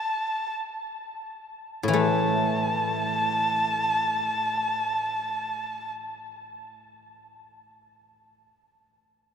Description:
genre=chinese traditional, Chinese chamber ensemble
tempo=free time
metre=none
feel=none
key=unclear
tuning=A4 = 439 Hz
part: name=rich erhu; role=melody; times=0.0-5.9 s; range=A5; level=-27 LUFS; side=equal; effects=none
part: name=guzheng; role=accompaniment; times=1.8-8.5 s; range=A2 to A3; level=-26 LUFS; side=left 2 dB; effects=none
room=wet cathedral reverb, RT60 5.6 s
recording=in a vast, echoing space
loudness=-24 LUFS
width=side -7 dB against mid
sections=0.0-1.9 A section; 1.9-7.6 B section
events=slowing down 0.0-1.9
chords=none

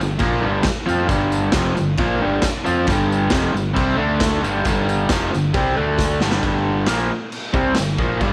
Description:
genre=garage rock duo or trio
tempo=135 BPM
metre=4/4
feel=straight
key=unclear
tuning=A4 = 440 Hz
part: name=raw garage guitar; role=riff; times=0.0-8.3 s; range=F2 to F4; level=-21 LUFS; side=equal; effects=overdrive
part: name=fuzz fingered electric bass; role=bass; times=0.0-8.3 s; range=F1 to F2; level=-28 LUFS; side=equal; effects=overdrive
part: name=tambourine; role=percussion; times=0.0-7.9 s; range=none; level=-38 LUFS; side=equal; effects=none
part: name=raw garage drum kit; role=drums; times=0.2-8.3 s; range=crash cymbal, kick drum, snare drum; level=-25 LUFS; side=equal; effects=none
room=light reverb, studio reverb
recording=none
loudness=-19 LUFS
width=mono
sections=0.0-6.4 A section; 6.4-8.3 B section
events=drum fill 6.0-6.4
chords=0.0 G5; 4.0 D5; 4.4 G5; 5.8 D5; 6.2 G5

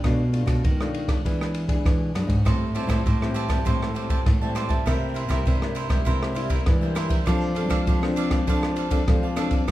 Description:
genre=samba and choro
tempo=100 BPM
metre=4/4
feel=straight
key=F major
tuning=A4 = 439 Hz
part: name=nylon-string guitar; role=accompaniment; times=0.0-9.7 s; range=G2 to A4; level=-29 LUFS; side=left 3 dB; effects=none
part: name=nylon-string guitar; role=bass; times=0.0-9.7 s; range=Gb2 to F3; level=-26 LUFS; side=equal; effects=none
part: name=open jazz drum kit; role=drums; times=0.0-9.7 s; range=kick drum, ride cymbal, rim click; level=-24 LUFS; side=equal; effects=none
part: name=cavaquinho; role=accompaniment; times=2.5-9.7 s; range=D4 to A5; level=-31 LUFS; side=right 5 dB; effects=none
room=moderate recital hall reverb, RT60 1.7 s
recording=recorded in a church or concert hall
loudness=-21 LUFS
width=side -15 dB against mid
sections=0.0-9.7 A section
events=none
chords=0.0 Bm7b5; 1.3 E7; 2.5 Am7; 4.9 C7; 7.3 F6

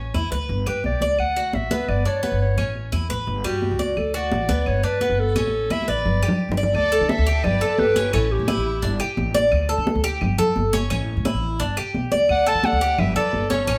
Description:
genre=latin, Cuban son and guajira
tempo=173 BPM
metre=4/4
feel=straight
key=unclear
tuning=A4 = 440 Hz
part: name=Cuban tres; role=arpeggios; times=0.0-13.8 s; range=G3 to D5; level=-26 LUFS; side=equal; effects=none
part: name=upright bass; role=bass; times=0.0-13.8 s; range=G1 to D3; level=-27 LUFS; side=equal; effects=none
part: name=claves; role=percussion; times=0.1-13.8 s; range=none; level=-38 LUFS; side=equal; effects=none
part: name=congas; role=percussion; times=0.1-13.8 s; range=none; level=-30 LUFS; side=equal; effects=none
part: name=clear clarinet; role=melody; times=0.7-9.0, 12.3-13.8 s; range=F#4 to A5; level=-26 LUFS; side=equal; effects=none
part: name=rich studio violin section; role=second line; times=6.7-9.0, 12.3-13.8 s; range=E4 to F#5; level=-35 LUFS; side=equal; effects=none
room=wet large studio reverb, RT60 0.9 s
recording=band playing live in one room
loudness=-21 LUFS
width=mono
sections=0.0-6.7 A section; 6.7-13.8 B section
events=drum fill 5.4-6.7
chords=0.5 G; 1.2 D; 1.9 G; 2.6 A; 3.3 G; 4.0 D; 4.7 G; 5.4 A; 6.1 G; 6.7 D5; 7.4 Gadd9; 8.1 A7; 8.8 Gsus2; 9.5 D5; 10.2 Gsus2; 10.9 A; 11.6 G; 12.3 D; 13.0 Gadd9

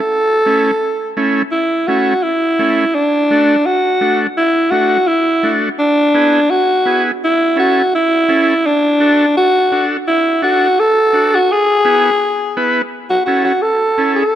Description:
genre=latin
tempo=169 BPM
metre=4/4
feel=straight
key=A major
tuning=A4 = 440 Hz
part: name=growling alto saxophone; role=melody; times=0.0-14.4 s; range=D4 to A4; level=-12 LUFS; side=equal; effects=none
part: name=combo organ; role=accompaniment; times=0.5-14.2 s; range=A3 to B4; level=-18 LUFS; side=right 1 dB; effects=none
room=moderate plate reverb, RT60 3.1 s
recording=dark, warm production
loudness=-11 LUFS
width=side -11 dB against mid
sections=0.0-1.5 A section; 1.5-12.9 B section; 12.9-14.4 C section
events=alto saxophone solo 12.9-14.4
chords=0.0 A; 3.0 D; 5.8 E7; 7.2 A; 8.7 D; 11.5 E; 12.9 A

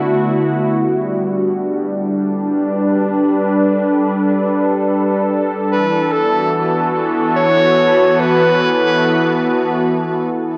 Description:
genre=ambient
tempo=free time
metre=none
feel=none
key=unclear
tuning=A4 = 439 Hz
part: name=warm analog pad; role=sustained chords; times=0.0-10.6 s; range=D3 to B4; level=-17 LUFS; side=equal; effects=subtle chorus
part: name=organ-like drone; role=drone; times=0.0-0.9 s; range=B3 to F#4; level=-30 LUFS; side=equal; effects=none
part: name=warm clarinet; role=melody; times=5.7-9.9 s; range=A4 to C#5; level=-18 LUFS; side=equal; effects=delay
room=wet cathedral reverb, RT60 5.2 s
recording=worn, warbling old tape, cassette tape, warbly pitch drift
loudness=-16 LUFS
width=mono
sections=0.8-10.6 A section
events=none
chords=0.0 D; 0.8 Gmaj7; 5.7 E7sus4

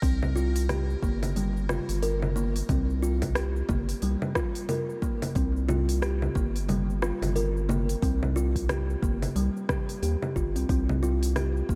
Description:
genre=organic downtempo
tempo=90 BPM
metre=4/4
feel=swing 60% on 16ths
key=unclear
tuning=A4 = 440 Hz
part: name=kalimba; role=arpeggios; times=0.0-11.8 s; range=G3 to Bb4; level=-33 LUFS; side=equal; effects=diffuse ambient delay
part: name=round analog bass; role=bass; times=0.0-11.8 s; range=G1 to Eb2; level=-30 LUFS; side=equal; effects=sidechain pumping
part: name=deep house drum kit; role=drums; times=0.0-11.8 s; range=cabasa, congas, hi-hat, rim click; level=-36 LUFS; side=equal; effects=none
part: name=electronic kick drum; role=drums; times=0.0-11.8 s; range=none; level=-32 LUFS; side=equal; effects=none
room=light reverb, digital ambience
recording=none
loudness=-27 LUFS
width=mono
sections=0.0-11.8 A section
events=none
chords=0.0 C7(no3); 10.7 F5

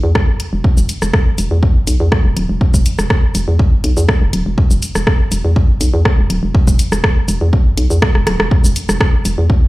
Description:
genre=minimal techno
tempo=122 BPM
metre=4/4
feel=straight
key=unclear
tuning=A4 = 440 Hz
part: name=hollow knocking FM bass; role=bass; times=0.0-9.5 s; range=D1 to E2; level=-14 LUFS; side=equal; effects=sidechain pumping
part: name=electronic kick drum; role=drums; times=0.2-9.6 s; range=none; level=-12 LUFS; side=equal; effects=overdrive
part: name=house drum kit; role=drums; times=0.2-9.4 s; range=hi-hat, rim click, shaker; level=-20 LUFS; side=equal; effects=overdrive
room=little or no reverb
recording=played on a big sound system in a bare room, large studio reverb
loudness=-11 LUFS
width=side -19 dB against mid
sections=0.0-8.5 A section; 8.5-9.7 B section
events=drum fill 8.1-8.5; drop 8.5-9.7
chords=none

